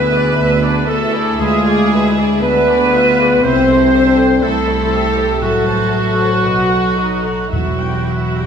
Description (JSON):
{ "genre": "classical", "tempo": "52-61 BPM", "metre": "4/4", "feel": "rubato", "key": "unclear", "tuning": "A4 = 440 Hz", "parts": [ { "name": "warm studio violin section", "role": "melody", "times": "0.0-8.5 s", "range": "F#4 to C5", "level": "-23 LUFS", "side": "left 2 dB", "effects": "none" }, { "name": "clear clarinet", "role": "second line", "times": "0.0-8.5 s", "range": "F#4 to C5", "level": "-23 LUFS", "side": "right 1 dB", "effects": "none" }, { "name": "clear oboe", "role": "second line", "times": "0.0-8.5 s", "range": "F#4 to C5", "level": "-22 LUFS", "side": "right 3 dB", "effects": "none" }, { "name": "dark studio violin section", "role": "second line", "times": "0.0-8.5 s", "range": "D4 to A4", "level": "-25 LUFS", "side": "equal", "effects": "none" }, { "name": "hollow small flute group", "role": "second line", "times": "0.0-8.5 s", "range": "F#4 to C5", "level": "-22 LUFS", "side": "right 1 dB", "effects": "none" }, { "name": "warm studio viola section", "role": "accompaniment", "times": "0.0-8.5 s", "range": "E4 to A5", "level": "-23 LUFS", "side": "right 4 dB", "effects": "none" }, { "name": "dark French horn section", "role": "sustained chords", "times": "0.0-8.5 s", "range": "F#3 to C4", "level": "-16 LUFS", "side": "left 2 dB", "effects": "none" }, { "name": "concert harp", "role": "arpeggios", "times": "0.0-8.5 s", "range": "A2 to E5", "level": "-24 LUFS", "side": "left 8 dB", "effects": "none" }, { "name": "dark studio double bass section", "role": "bass", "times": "0.0-8.5 s", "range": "E1 to D2", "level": "-24 LUFS", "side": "right 4 dB", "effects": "none" }, { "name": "warm studio cello section", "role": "bass", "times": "0.0-8.5 s", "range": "C2 to B2", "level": "-22 LUFS", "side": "right 5 dB", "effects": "none" }, { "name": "timpani", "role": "percussion", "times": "7.5-8.5 s", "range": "E2", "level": "-23 LUFS", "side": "right 2 dB", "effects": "none" } ], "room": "wet recital hall reverb, RT60 1.5 s", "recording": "none", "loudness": "-12 LUFS", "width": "side -7 dB against mid", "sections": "0.0-8.5 A section", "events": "none", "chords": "0.0 E7/D; 3.4 Am/C; 5.4 Am; 6.4 B7; 7.5 Em", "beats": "0.36 1.39 2.43 | 3.43 4.42 5.41 6.44 | 7.51" }